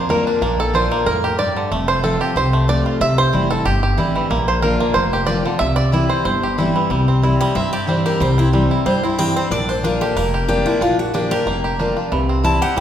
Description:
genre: bluegrass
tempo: 185 BPM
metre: 4/4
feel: swing 53% on 8ths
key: C mixolydian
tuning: A4 = 440 Hz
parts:
  - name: bluegrass banjo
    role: melody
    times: 0.0-12.8 s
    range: D3 to E5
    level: -20 LUFS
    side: right 3 dB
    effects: none
  - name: picked steel-string acoustic guitar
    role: accompaniment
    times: 0.0-12.8 s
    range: F2 to F4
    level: -20 LUFS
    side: left 2 dB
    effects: none
  - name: upright bass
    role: bass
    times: 0.0-12.8 s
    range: F1 to G2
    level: -21 LUFS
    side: equal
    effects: none
  - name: picked steel-string acoustic guitar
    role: melody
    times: 7.4-12.8 s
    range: E4 to A5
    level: -21 LUFS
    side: left 2 dB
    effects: none
room: wet scoring stage reverb, RT60 1.5 s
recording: recorded in a church or concert hall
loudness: -15 LUFS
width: side -10 dB against mid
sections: 0.0-6.9 A section; 6.9-12.8 B section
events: five-string banjo solo 0.0-6.9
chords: 0.0 Bb; 1.7 F; 3.0 C; 4.3 Bb; 5.6 C; 9.5 Bb; 12.1 C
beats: 0.10 | 0.42 0.74 1.07 1.39 | 1.72 2.04 2.36 2.69 | 3.01 3.34 3.66 3.98 | 4.31 4.63 4.96 5.28 | 5.61 5.93 6.26 6.58 | 6.91 7.23 7.56 7.88 | 8.21 8.53 8.86 9.19 | 9.51 9.84 10.16 10.49 | 10.81 11.14 11.47 11.79 | 12.12 12.44 12.77

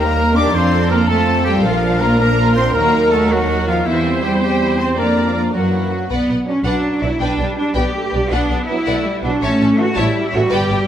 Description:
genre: cinematic, heroic adventure film score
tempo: 108 BPM (dotted quarters)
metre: 6/8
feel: straight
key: Bb major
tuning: A4 = 438 Hz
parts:
  - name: rich studio violin section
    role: melody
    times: 0.0-10.8 s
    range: C4 to A5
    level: -27 LUFS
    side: left 4 dB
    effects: none
  - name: clear oboe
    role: second line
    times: 0.0-6.1 s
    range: E4 to D5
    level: -24 LUFS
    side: right 1 dB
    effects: none
  - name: clear symphonic violin section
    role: second line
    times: 0.0-10.8 s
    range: B4 to D6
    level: -27 LUFS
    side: left 2 dB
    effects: none
  - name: dark clarinet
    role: second line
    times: 0.0-6.1 s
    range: E4 to D5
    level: -26 LUFS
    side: left 1 dB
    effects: none
  - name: small flute group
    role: second line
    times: 0.0-6.1 s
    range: E5 to D6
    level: -23 LUFS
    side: left 1 dB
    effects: none
  - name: rich symphonic viola section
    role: accompaniment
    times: 0.0-10.9 s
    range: F#3 to D5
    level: -22 LUFS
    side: equal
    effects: none
  - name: clear trombone section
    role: sustained chords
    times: 0.0-10.4 s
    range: Fb3 to Eb4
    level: -26 LUFS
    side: right 3 dB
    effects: none
  - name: mellow French horn section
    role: sustained chords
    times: 0.0-6.1 s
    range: E3 to D4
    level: -24 LUFS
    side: left 4 dB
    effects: none
  - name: rich symphonic cello section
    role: bass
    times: 0.0-10.9 s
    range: E3 to G4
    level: -19 LUFS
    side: right 1 dB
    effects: none
  - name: rich symphonic double bass section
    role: bass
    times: 0.0-10.8 s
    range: G1 to Gb2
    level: -20 LUFS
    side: right 2 dB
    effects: none
room: moderate scoring stage reverb, RT60 1.8 s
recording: none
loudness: -14 LUFS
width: side -10 dB against mid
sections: 0.0-6.1 A section; 6.1-10.9 B section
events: none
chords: 0.0 Eb; 0.5 Bb/F; 1.1 F; 1.6 Bb; 2.7 Ebm; 3.9 C/E; 5.0 Bb/F; 5.5 Gb7; 6.1 Bm; 7.2 G/B; 8.3 Bm; 9.4 A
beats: | 0.54 1.09 | 1.65 2.20 | 2.75 3.30 | 3.85 4.41 | 4.97 5.53 | 6.09 6.65 | 7.21 7.76 | 8.31 8.87 | 9.42 9.97 | 10.52

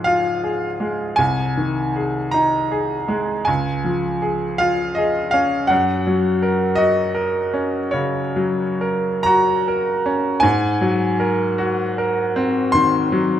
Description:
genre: classical, romantic nocturne for solo piano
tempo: 43-56 BPM (dotted quarters)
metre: 12/8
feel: rubato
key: Db major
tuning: A4 = 442 Hz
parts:
  - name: bright baby grand piano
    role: solo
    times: 0.0-13.4 s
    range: C2 to C6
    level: -17 LUFS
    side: equal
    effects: none
room: moderate recital hall reverb, RT60 1.3 s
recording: close, detailed microphones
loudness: -17 LUFS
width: side -10 dB against mid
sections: 0.0-13.4 A section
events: none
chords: 0.0 Db; 1.2 Ab/C; 3.5 Db; 5.7 Gb; 10.4 Ab9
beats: 0.06 | 1.18 2.33 3.48 4.61 | 5.71 6.80 7.95 9.26 | 10.44 11.59 12.74

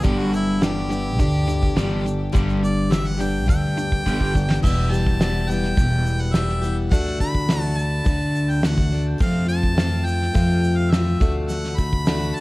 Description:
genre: folk rock and heartland rock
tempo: 105 BPM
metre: 4/4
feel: straight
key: unclear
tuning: A4 = 439 Hz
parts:
  - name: bright harmonica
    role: melody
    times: 0.0-12.4 s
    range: E4 to B5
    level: -28 LUFS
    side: equal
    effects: analog delay
  - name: picked plugged-in steel-string acoustic guitar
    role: accompaniment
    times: 0.0-12.4 s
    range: E2 to G4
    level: -25 LUFS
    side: left 2 dB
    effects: analog delay
  - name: overdriven electric guitar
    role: riff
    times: 0.0-4.6 s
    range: G2 to G3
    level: -27 LUFS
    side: equal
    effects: analog delay
  - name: upright bass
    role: bass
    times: 0.0-12.3 s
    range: E1 to F2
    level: -23 LUFS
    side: equal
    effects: none
  - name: soft brush drum kit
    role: drums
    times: 0.0-12.4 s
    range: crash cymbal, hi-hat, kick drum, snare drum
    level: -23 LUFS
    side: equal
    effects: analog delay
  - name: egg shaker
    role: percussion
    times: 0.0-12.4 s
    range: none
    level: -46 LUFS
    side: right 3 dB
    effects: none
room: little or no reverb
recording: echo-heavy mix, vinyl crackle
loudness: -18 LUFS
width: side -20 dB against mid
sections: 0.0-4.6 A section; 4.6-12.4 B section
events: harmonica solo 0.0-4.6; drum fill 4.1-4.6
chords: 0.0 G; 4.6 Em; 6.9 D; 9.2 F; 11.2 D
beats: | 0.04 0.62 1.19 1.76 | 2.33 2.91 3.48 4.05 | 4.62 5.20 5.77 6.34 | 6.91 7.48 8.05 8.63 | 9.20 9.77 10.34 10.91 | 11.48 12.06

